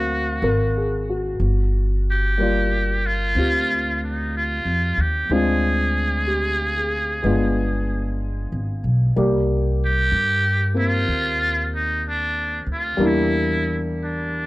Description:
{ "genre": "jazz ballad", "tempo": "62 BPM", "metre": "4/4", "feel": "swing 66% on 8ths", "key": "unclear", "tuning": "A4 = 438 Hz", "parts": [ { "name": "trumpet with metal mute", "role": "melody", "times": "0.0-14.5 s", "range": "D4 to Ab4", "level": "-23 LUFS", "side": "right 1 dB", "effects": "none" }, { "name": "dark upright piano", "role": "accompaniment", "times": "0.0-14.5 s", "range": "F#3 to E#5", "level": "-24 LUFS", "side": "left 1 dB", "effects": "none" }, { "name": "upright bass", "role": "bass", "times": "0.0-14.5 s", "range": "G1 to G2", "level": "-22 LUFS", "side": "equal", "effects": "none" } ], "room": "light reverb", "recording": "dry, close 1970s-style studio recording", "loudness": "-19 LUFS", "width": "side -19 dB against mid", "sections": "0.0-14.5 A section", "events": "none", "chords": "0.0 D7alt; 1.4 Gm7; 5.3 Dm7b5; 7.2 G7b9; 9.2 Cm9; 13.0 Em7b5" }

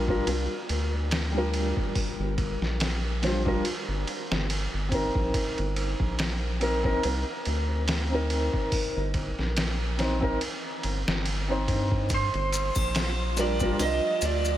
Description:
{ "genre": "trip hop", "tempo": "71 BPM", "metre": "4/4", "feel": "swing 56% on 16ths", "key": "G minor", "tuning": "A4 = 445 Hz", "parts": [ { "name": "felt-muted upright piano", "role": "accompaniment", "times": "0.0-14.0 s", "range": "G3 to C5", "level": "-30 LUFS", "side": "equal", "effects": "tremolo, tape echo" }, { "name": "round analog bass", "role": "bass", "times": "0.0-14.6 s", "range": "G1 to G2", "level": "-29 LUFS", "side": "equal", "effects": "none" }, { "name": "trip hop sampler-style drum kit", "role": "drums", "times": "0.1-14.4 s", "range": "hi-hat, kick drum, ride cymbal, snare drum", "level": "-30 LUFS", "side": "equal", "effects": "none" }, { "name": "electric slide guitar", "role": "melody", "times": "12.1-14.6 s", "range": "C5 to Eb5", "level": "-28 LUFS", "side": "right 4 dB", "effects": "lush chorus, tape echo" }, { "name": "maracas and triangle", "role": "percussion", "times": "12.1-14.6 s", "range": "none", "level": "-34 LUFS", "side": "left 3 dB", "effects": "none" }, { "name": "wind-like tuned noise texture", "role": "texture", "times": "12.5-14.6 s", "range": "F3 to F4", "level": "-39 LUFS", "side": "right 2 dB", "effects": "built-in reverb" } ], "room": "moderate huge ambient reverb, RT60 6.8 s", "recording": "dreamy mix soaked in reverb", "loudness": "-25 LUFS", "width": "side -12 dB against mid", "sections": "0.0-14.6 A section", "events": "none", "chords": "0.0 Gm7; 5.3 Cm7/G; 12.1 Gm7" }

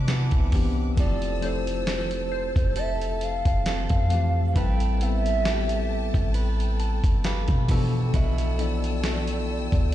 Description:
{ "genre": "contemporary R&B", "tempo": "67 BPM", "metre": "4/4", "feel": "swing 54% on 16ths", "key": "A minor", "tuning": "A4 = 438 Hz", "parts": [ { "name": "bell-like tine electric piano", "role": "accompaniment", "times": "0.0-9.9 s", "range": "E3 to A5", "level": "-31 LUFS", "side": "left 5 dB", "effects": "fast stereo tremolo" }, { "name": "clear studio string section", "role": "sustained chords", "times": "0.0-9.9 s", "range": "A4 to E6", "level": "-38 LUFS", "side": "left 2 dB", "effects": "none" }, { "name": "picked swing-style acoustic guitar", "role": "arpeggios", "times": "0.0-9.9 s", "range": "B2 to B4", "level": "-36 LUFS", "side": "right 8 dB", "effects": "ping-pong delay" }, { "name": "clean 808-style bass", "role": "bass", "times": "0.0-9.9 s", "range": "F1 to C3", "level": "-25 LUFS", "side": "equal", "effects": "none" }, { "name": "dusty soul sampler-style drum kit", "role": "drums", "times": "0.1-9.9 s", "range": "hi-hat, kick drum, snare drum", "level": "-25 LUFS", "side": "equal", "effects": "none" }, { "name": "gliding portamento lead", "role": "melody", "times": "1.0-9.9 s", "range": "C5 to G5", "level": "-30 LUFS", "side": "right 1 dB", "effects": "chorus, ping-pong delay" }, { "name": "glassy wavetable pluck", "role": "texture", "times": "1.4-8.0 s", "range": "C5 to A5", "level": "-42 LUFS", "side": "left 3 dB", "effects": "none" } ], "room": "digital ambience", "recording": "played on a big sound system in a bare room, stone room reverb, nothing above 10.5 kHz", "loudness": "-22 LUFS", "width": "side -13 dB against mid", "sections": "0.0-9.9 A section", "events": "tine electric piano fill 6.3-8.1", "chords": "0.0 Cmaj9; 1.0 Fmaj7; 4.6 Am9; 7.7 G13/B" }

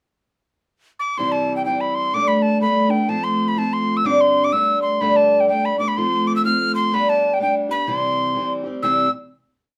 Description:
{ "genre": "celtic folk, Celtic polka", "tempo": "125 BPM", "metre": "2/4", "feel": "swing 61% on 8ths", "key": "C major", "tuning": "A4 = 435 Hz", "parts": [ { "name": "reedy mid whistle", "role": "melody", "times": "1.0-9.1 s", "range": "G5 to F6", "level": "-22 LUFS", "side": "equal", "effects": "none" }, { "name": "picked steel-string acoustic guitar", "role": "accompaniment", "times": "1.2-9.1 s", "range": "G2 to G4", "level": "-22 LUFS", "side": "equal", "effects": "none" } ], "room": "moderate small room reverb, RT60 0.5 s", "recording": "none", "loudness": "-19 LUFS", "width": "mono", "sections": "0.2-1.2 pickup bar; 1.2-8.8 A section; 8.8-9.8 final chord", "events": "none", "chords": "0.2 N.C.; 1.2 C; 2.1 Gadd9; 3.1 F; 4.1 Gsus4; 4.5 Gadd9; 6.0 F; 6.9 G; 7.9 C" }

